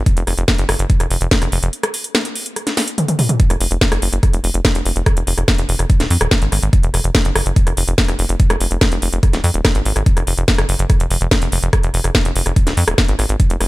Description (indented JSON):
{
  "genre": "psychedelic trance",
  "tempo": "144 BPM",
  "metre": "4/4",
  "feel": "straight",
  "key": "F phrygian",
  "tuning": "A4 = 439 Hz",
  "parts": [
    { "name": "tight sequencer bass", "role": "bass", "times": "0.0-13.7 s", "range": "Eb1 to F2", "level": "-17 LUFS", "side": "equal", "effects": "none" },
    { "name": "drum and bass drum kit", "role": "drums", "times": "0.1-13.7 s", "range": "hi-hat, rim click, snare drum, toms", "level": "-18 LUFS", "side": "equal", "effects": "none" },
    { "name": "electronic kick drum", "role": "drums", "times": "0.1-13.5 s", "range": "none", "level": "-14 LUFS", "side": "equal", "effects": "none" }
  ],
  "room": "little or no reverb",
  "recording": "none",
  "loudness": "-14 LUFS",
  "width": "side -19 dB against mid",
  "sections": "0.0-13.7 A section",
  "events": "break 1.7-3.4; drum fill 2.8-3.4",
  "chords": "none"
}